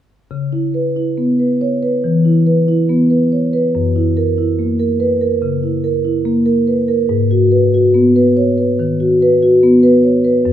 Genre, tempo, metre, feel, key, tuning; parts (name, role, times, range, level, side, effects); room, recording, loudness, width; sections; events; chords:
classical, contemporary piece for solo marimba; 71 BPM; 4/4; rubato; C# dorian; A4 = 440 Hz
marimba with soft mallets; solo; 0.3-10.5 s; F#2 to C#5; -12 LUFS; equal
light reverb; small room reverb; -12 LUFS; side -11 dB against mid
0.3-10.5 A section
0.3 C#m7; 3.7 F#7; 7.1 G#m7